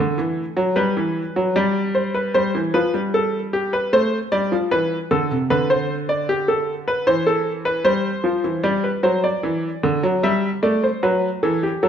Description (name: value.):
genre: classical, baroque-style two-part invention for grand piano.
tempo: 76 BPM.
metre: 4/4.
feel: straight.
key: C major.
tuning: A4 = 440 Hz.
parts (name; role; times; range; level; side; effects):
clear baby grand piano; solo; 0.0-11.9 s; C3 to E5; -18 LUFS; equal; none.
room: moderate recital hall reverb, RT60 1.6 s.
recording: dark, warm production.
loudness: -18 LUFS.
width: side -8 dB against mid.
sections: 0.0-11.9 A section.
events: none.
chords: 0.0 D; 0.8 G; 2.3 C; 3.9 Dm7; 5.5 G/D (rootless); 7.1 C/E; 8.6 G; 10.2 Am7/G.